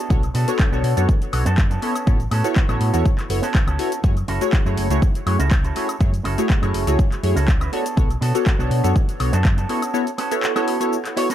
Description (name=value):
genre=filtered disco house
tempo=122 BPM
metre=4/4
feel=straight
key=F# minor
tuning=A4 = 440 Hz
part: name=electric guitar with an envelope filter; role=riff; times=0.0-11.3 s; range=B3 to C#5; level=-27 LUFS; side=right 4 dB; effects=sidechain pumping
part: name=funky polysynth comp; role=accompaniment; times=0.1-11.3 s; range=A3 to C#5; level=-23 LUFS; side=left 1 dB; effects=chorus, phaser, sidechain pumping, dub echo
part: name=hollow-body short-scale fingered electric bass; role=bass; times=0.1-9.6 s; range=F#1 to B2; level=-21 LUFS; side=equal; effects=sidechain pumping
part: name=electronic kick drum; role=drums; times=0.1-9.6 s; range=none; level=-18 LUFS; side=equal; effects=none
part: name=punchy analog drum machine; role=drums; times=0.1-11.3 s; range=handclaps, hi-hat, shaker, woodblock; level=-29 LUFS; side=left 1 dB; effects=overdrive, sidechain pumping on perc, sidechain pumping on hats, dub echo
room=light reverb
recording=echo-heavy mix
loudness=-17 LUFS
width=side -11 dB against mid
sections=0.0-11.3 A section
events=break 9.9-11.3; clean electric guitar fill 10.9-11.3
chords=0.0 Bm7; 1.8 F#m7; 7.7 Bm7; 9.7 A69